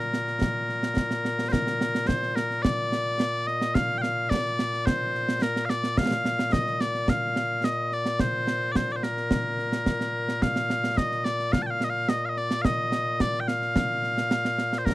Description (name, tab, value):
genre	scottish traditional, Scottish pipe music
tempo	108 BPM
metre	4/4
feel	straight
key	Bb major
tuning	A4 = 440 Hz
part	loud bright bagpipes	melody	0.0-14.9 s	Bb2 to A5	-26 LUFS	left 1 dB	none
part	concert snare drum and concert bass drum	drums	0.0-14.9 s	none	-27 LUFS	right 1 dB	none
room	little or no reverb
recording	dry, close 1970s-style studio recording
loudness	-24 LUFS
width	side -18 dB against mid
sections	0.0-1.5 A section; 1.5-14.9 B section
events	none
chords	none